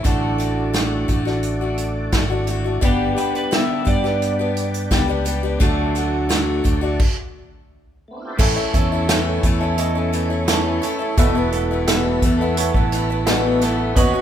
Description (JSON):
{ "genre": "folk rock and heartland rock", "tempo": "86 BPM", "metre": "4/4", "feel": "straight", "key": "unclear", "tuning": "A4 = 440 Hz", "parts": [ { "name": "picked steel-string acoustic guitar", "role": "accompaniment", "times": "0.0-14.2 s", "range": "E2 to G4", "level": "-23 LUFS", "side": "left 4 dB", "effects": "none" }, { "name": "electric guitar through a small old amp", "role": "riff", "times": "0.0-14.2 s", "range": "E2 to B4", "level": "-25 LUFS", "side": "right 4 dB", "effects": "none" }, { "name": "unplugged drum kit", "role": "drums", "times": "0.0-14.1 s", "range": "crash cymbal, hi-hat, kick drum, snare drum", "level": "-20 LUFS", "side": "equal", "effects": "none" }, { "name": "tonewheel organ", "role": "sustained chords", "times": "0.1-14.2 s", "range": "A3 to D5", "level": "-32 LUFS", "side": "equal", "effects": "slow rotary speaker, overdrive, chorus vibrato" }, { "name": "fingered electric bass", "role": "bass", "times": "0.1-14.1 s", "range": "E1 to G2", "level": "-24 LUFS", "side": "equal", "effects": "none" }, { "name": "electric slide guitar", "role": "second line", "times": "2.9-5.2, 14.0-14.2 s", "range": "G4 to E5", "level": "-26 LUFS", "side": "right 3 dB", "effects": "none" }, { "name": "bright upright piano", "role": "accompaniment", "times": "8.4-14.2 s", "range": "A4 to E5", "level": "-28 LUFS", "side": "right 7 dB", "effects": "none" } ], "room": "light reverb", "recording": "none", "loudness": "-17 LUFS", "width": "side -10 dB against mid", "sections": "0.0-8.4 A section; 8.4-14.2 B section", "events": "stop 7.0-8.4", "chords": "0.1 D/A; 2.8 G; 5.6 D; 7.0 N.C.; 8.4 A; 11.2 Esus4", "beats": "| 0.05 0.74 1.44 2.13 | 2.83 3.52 4.22 4.91 | 5.61 6.30 7.00 7.70 | 8.39 9.09 9.78 10.48 | 11.18 11.87 12.57 13.27 | 13.96" }